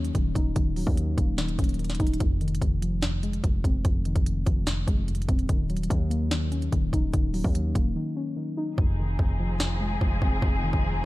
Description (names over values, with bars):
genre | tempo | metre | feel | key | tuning
hip hop, trap | 146 BPM | 4/4 | half-time | F phrygian | A4 = 440 Hz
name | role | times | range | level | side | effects
muted felt-like synth keys | accompaniment | 0.0-11.1 s | F2 to Eb4 | -29 LUFS | left 1 dB | chorus
distorted 808-style bass | bass | 0.0-11.0 s | Eb1 to Eb2 | -28 LUFS | equal | distortion
trap drum kit | drums | 0.0-10.8 s | hi-hat, kick drum, snare drum | -26 LUFS | equal | none
muted symphonic string section | sustained chords | 8.8-11.1 s | F3 to Ab4 | -32 LUFS | left 3 dB | none
room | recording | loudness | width
little or no reverb | dark, warm production | -23 LUFS | side -18 dB against mid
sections
0.0-11.1 A section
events
break 8.0-8.8; hi-hats muted 8.8-11.1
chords
0.0 Ebm7; 2.2 Fm7; 5.5 Ebm7; 8.8 Fm7